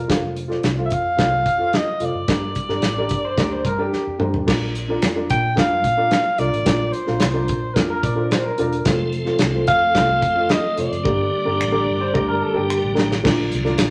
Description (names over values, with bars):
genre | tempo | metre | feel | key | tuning
uptempo 1960s-style soul | 110 BPM | 4/4 | straight | Bb major | A4 = 440 Hz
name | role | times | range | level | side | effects
electric guitar through a small old amp | riff | 0.0-4.4, 7.9-13.2 s | G4 to D5 | -28 LUFS | equal | none
vintage muted fingered electric bass | bass | 0.0-13.9 s | E1 to Bb2 | -29 LUFS | equal | none
dark upright piano | accompaniment | 0.1-13.9 s | G2 to F5 | -26 LUFS | equal | none
natural country drum kit | drums | 0.1-13.9 s | crash cymbal, hi-hat, kick drum, snare drum, toms | -24 LUFS | equal | none
breathy alto saxophone | melody | 0.9-12.9 s | Bb4 to G5 | -24 LUFS | equal | none
finger snap | percussion | 5.0-13.9 s | none | -33 LUFS | equal | none
tonewheel organ | sustained chords | 8.9-13.9 s | D3 to A4 | -28 LUFS | equal | fast rotary speaker, overdrive, chorus vibrato
room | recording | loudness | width
wet large studio reverb, RT60 1.0 s | none | -20 LUFS | mono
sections
0.0-4.5 A section; 4.5-13.2 A section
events
drum fill 3.9-4.5, 11.1-13.2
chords
0.1 F; 2.3 Gm; 4.5 Bb; 8.9 F; 11.1 Gm; 13.2 Bb